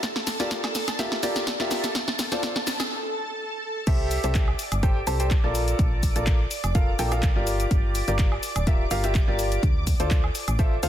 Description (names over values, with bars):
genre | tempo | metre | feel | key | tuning
piano house | 125 BPM | 4/4 | swing 54% on 16ths | unclear | A4 = 440 Hz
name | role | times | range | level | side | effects
analog string pad | sustained chords | 0.0-10.9 s | A4 to D6 | -33 LUFS | right 1 dB | ensemble chorus, phaser, sidechain pumping
electronic kick drum | drums | 0.0-10.7 s | none | -22 LUFS | equal | high-pass filter on kick, high-pass filter on room
house drum kit | drums | 0.0-10.9 s | crash cymbal, handclaps, hi-hat, shaker, snare drum, woodblock | -29 LUFS | equal | none
clear grand piano | riff | 0.4-10.9 s | F4 to A5 | -29 LUFS | equal | vintage 12-bit sampler grit, sidechain pumping, dub echo
solid FM bass | bass | 3.9-10.9 s | D1 to D2 | -27 LUFS | equal | sidechain pumping
room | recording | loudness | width
light reverb, digital ambience | dense, heavily limited modern master | -22 LUFS | side -11 dB against mid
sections
0.0-3.9 A section; 3.9-10.9 B section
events
build-up 0.0-3.9; drum fill 0.0-2.9; filter sweep on grand piano 0.0-3.9; break 2.9-3.9; drop 3.9-10.9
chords
0.0 Bbmaj7; 1.9 N.C.; 3.9 C6; 5.5 Bbmaj7; 7.5 Gm7; 9.6 Dm7